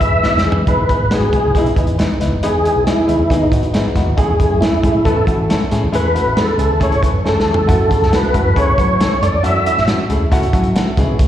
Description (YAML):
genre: uptempo 1960s-style soul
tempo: 137 BPM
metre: 4/4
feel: straight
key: E major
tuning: A4 = 440 Hz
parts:
  - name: tonewheel organ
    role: melody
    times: 0.0-9.9 s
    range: D#4 to E5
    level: -16 LUFS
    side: equal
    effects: overdrive, chorus vibrato, slow rotary speaker, slapback echo
  - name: warm upright piano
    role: accompaniment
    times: 0.0-11.3 s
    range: E3 to B4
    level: -20 LUFS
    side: left 2 dB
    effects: slapback echo
  - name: vintage muted fingered electric bass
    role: bass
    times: 0.0-11.3 s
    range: E1 to F#3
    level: -18 LUFS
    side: equal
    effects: none
  - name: crunchy breakbeat drum kit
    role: drums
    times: 0.0-11.3 s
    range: hi-hat, kick drum, snare drum, toms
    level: -18 LUFS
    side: equal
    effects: none
room: light reverb, small room ambience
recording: live gig heard through the venue's PA, recital hall reverb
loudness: -12 LUFS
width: side -11 dB against mid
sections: 0.7-11.3 A section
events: drum fill 0.2-0.7, 7.3-7.7; tonewheel organ solo 0.7-11.3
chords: 0.0 E; 0.7 Emaj7; 4.2 Amaj7; 7.7 F#m7